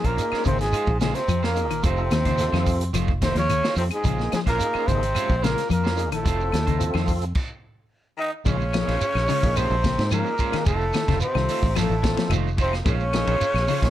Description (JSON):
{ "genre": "afrobeat", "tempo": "109 BPM", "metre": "4/4", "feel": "straight", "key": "Bb minor", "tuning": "A4 = 440 Hz", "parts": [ { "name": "breathy trumpet", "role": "melody", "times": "0.0-13.9 s", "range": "Ab4 to Eb5", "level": "-26 LUFS", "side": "right 1 dB", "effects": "plate reverb" }, { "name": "growling tenor saxophone", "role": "second line", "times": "0.0-13.9 s", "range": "Ab3 to Eb4", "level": "-36 LUFS", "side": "right 4 dB", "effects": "plate reverb" }, { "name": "raspy baritone saxophone", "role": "second line", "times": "0.0-13.9 s", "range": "Ab2 to Eb3", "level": "-34 LUFS", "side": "left 5 dB", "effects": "plate reverb" }, { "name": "clean electric guitar", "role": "arpeggios", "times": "0.0-13.9 s", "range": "Db3 to F3", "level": "-29 LUFS", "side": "left 8 dB", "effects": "none" }, { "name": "electric guitar at the edge of break-up", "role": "stabs", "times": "0.0-13.9 s", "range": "Ab3 to C5", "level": "-33 LUFS", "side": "right 9 dB", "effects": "warbly pitch drift" }, { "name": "fingered electric bass", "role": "bass", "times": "0.0-13.9 s", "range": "F1 to Ab2", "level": "-25 LUFS", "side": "equal", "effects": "none" }, { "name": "vintage drum kit", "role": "drums", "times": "0.0-13.9 s", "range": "crash cymbal, hi-hat, kick drum, ride cymbal, snare drum", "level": "-27 LUFS", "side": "equal", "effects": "none" }, { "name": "shekere", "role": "percussion", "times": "0.1-13.9 s", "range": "none", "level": "-31 LUFS", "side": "right 3 dB", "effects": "none" }, { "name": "tonewheel organ", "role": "accompaniment", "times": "0.2-13.9 s", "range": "Bb3 to A4", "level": "-33 LUFS", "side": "left 1 dB", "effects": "slow rotary speaker, overdrive, chorus vibrato, plate reverb" }, { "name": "claves", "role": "percussion", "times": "0.3-13.7 s", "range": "none", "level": "-35 LUFS", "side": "left 20 dB", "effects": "none" } ], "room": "light reverb", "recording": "none", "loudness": "-20 LUFS", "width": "side -12 dB against mid", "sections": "0.0-8.5 A section; 8.5-13.9 B section", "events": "stop 7.4-8.5", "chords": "0.0 Bbm9; 1.8 F7; 4.0 Bbm9; 6.2 F7; 8.5 Bbm9; 10.7 F7; 12.9 Bbm9" }